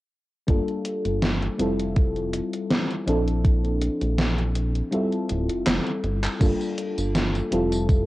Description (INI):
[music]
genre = vaporwave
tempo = 81 BPM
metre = 4/4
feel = swing 54% on 16ths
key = unclear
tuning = A4 = 439 Hz
[part]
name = mellow FM electric piano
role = accompaniment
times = 0.5-8.1 s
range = F3 to A4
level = -26 LUFS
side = left 1 dB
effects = lush chorus, vintage 12-bit sampler grit, tape echo
[part]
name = chorused synth bass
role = bass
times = 0.5-8.1 s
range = D1 to Bb1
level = -26 LUFS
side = equal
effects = tube saturation
[part]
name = electronic kick drum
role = drums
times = 0.5-8.1 s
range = none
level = -20 LUFS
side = equal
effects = overdrive, vintage 12-bit sampler grit, cassette tape
[part]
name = gated 80s digital drum machine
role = drums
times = 0.5-8.1 s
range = crash cymbal, handclaps, hi-hat, snare drum, tambourine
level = -26 LUFS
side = equal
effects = gated reverb, gated reverb snare, overdrive, vintage 12-bit sampler grit, cassette tape
[sound]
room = light reverb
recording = home recording on cassette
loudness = -22 LUFS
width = side -17 dB against mid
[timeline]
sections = 0.5-6.4 A section; 6.4-8.1 B section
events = kick drops out 4.9-6.4; drum fill 5.7-6.4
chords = 0.5 Gm9; 1.6 Fmaj7; 3.1 Bbmaj9#11; 4.9 Dm11; 6.4 Gm9; 7.5 Fmaj7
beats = | 0.48 1.22 1.97 2.71 | 3.45 4.19 4.93 5.67 | 6.41 7.15 7.89